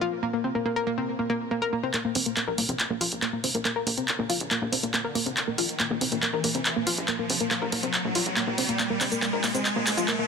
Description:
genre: driving peak-time techno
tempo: 140 BPM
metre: 4/4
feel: straight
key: unclear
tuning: A4 = 441 Hz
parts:
  - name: analog pluck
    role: riff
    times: 0.0-10.2 s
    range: Bb3 to Bb4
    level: -27 LUFS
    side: left 1 dB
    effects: chorus, vintage 12-bit sampler grit, tape echo
  - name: punchy analog drum machine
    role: drums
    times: 1.9-10.2 s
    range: handclaps, hi-hat, shaker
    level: -26 LUFS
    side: equal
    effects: high-pass filter on snare, small room ambience, high-pass filter on hats, high-pass filter on perc
  - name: riser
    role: sound effects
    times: 3.2-10.3 s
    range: none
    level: -32 LUFS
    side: equal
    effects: none
  - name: tight sequencer bass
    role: bass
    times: 2.2-10.1 s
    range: Ab1 to C2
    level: -37 LUFS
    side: equal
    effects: high-pass filter
room: light reverb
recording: dense, heavily limited modern master, high-pass filter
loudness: -24 LUFS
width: side -5 dB against mid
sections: 0.0-1.9 A section; 1.9-10.3 B section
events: build-up 1.9-10.3; drum fill 1.9-10.3; riser 3.2-10.3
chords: 0.0 Bb5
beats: | 0.23 0.65 1.08 1.51 | 1.94 2.37 2.80 3.23 | 3.65 4.08 4.51 4.94 | 5.37 5.80 6.22 6.65 | 7.08 7.51 7.94 8.37 | 8.80 9.22 9.65 10.08

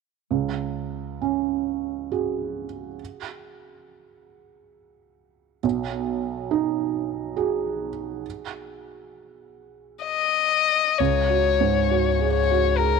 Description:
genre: neoclassical piano and strings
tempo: 68 BPM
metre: 3/4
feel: rubato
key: unclear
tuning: A4 = 440 Hz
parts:
  - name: felt-muted upright piano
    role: accompaniment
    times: 0.3-13.0 s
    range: B1 to G#4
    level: -25 LUFS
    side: right 9 dB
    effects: none
  - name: muted violin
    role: melody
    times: 10.1-13.0 s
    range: A#4 to D#5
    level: -20 LUFS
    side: left 10 dB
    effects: none
  - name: warm sub bass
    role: bass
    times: 11.0-13.0 s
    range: C#2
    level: -25 LUFS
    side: left 2 dB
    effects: none
room: light reverb, small room ambience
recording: 1960s-style stereo with parts hard left and right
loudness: -22 LUFS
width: side -5 dB against mid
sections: 0.3-11.0 A section; 11.0-13.0 B section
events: none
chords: 0.3 C#sus4; 5.6 G#m7/B; 11.0 C#sus4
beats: | 0.31 1.22 2.11 | 3.00 3.88 4.77 | 5.64 6.51 7.37 | 8.24 9.14 10.05 | 10.99 11.90 12.80

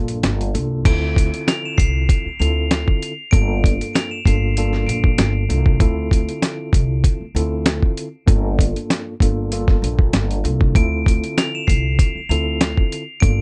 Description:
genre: hip hop, boom-bap hip-hop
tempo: 97 BPM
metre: 4/4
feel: swing 54% on 16ths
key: D minor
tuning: A4 = 440 Hz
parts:
  - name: mellow tine electric piano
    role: accompaniment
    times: 0.0-13.4 s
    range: G2 to A4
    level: -28 LUFS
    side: equal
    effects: high-pass filter, low-pass filter
  - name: upright bass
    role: bass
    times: 0.0-13.4 s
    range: G1 to D2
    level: -23 LUFS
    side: equal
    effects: none
  - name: dusty soul sampler-style drum kit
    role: drums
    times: 0.1-13.4 s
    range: crash cymbal, hi-hat, kick drum, snare drum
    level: -19 LUFS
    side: equal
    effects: none
  - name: glockenspiel with hard plastic mallets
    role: melody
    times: 0.9-5.8, 10.8-13.4 s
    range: C7 to F7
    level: -29 LUFS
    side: equal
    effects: high-pass filter, low-pass filter, delay
room: little or no reverb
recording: dark, warm production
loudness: -19 LUFS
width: mono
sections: 0.9-13.4 A section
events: none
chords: 0.0 Gm9; 0.9 Dm9; 3.3 Gm9; 5.8 Dm9; 8.3 Gm9; 10.7 Dm9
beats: 0.23 | 0.85 1.47 2.09 2.71 | 3.33 3.94 4.56 5.18 | 5.80 6.42 7.04 7.66 | 8.27 8.89 9.51 10.13 | 10.75 11.37 11.99 12.60 | 13.22

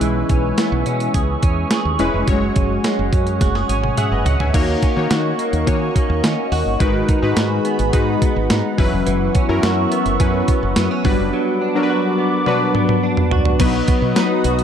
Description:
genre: 1980s-style pop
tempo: 106 BPM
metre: 4/4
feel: straight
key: unclear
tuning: A4 = 440 Hz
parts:
  - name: warm analog keys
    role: accompaniment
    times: 0.0-14.6 s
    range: F#3 to G#5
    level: -20 LUFS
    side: left 3 dB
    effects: chorus
  - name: phased analog pad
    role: sustained chords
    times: 0.0-14.6 s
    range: B3 to D#6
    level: -24 LUFS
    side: right 2 dB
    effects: phaser, chorus
  - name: direct-recorded clean electric guitar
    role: riff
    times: 0.0-14.6 s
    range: D#3 to G#4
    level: -24 LUFS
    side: right 4 dB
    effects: analog chorus, digital delay
  - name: woody fretless electric bass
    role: bass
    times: 0.0-14.6 s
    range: E1 to D#3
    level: -22 LUFS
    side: equal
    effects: none
  - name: clean 12-bit digital drum machine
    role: drums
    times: 0.0-14.6 s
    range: crash cymbal, hi-hat, kick drum, snare drum, tambourine, toms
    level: -19 LUFS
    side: equal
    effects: none
  - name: mellow synth brass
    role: stabs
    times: 13.6-14.6 s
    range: B3 to F#4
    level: -25 LUFS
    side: equal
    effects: chorus, phaser, digital delay
room: moderate plate reverb, RT60 1.6 s, digital ambience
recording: dark, warm production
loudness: -15 LUFS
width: side -8 dB against mid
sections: 0.0-4.5 A section; 4.5-13.6 B section; 13.6-14.6 C section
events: drum fill 3.4-4.5, 12.5-13.6; synth keys fill 3.4-4.5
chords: 0.0 C#m7; 2.3 F#sus2; 4.5 D#m7; 6.8 G#m7; 8.8 F#7sus4; 11.1 Gmaj7; 13.6 B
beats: | 0.01 0.58 1.14 1.71 | 2.28 2.84 3.41 3.97 | 4.54 5.11 5.67 6.24 | 6.80 7.37 7.94 8.50 | 9.07 9.63 10.20 10.77 | 11.33 11.90 12.46 13.03 | 13.60 14.16

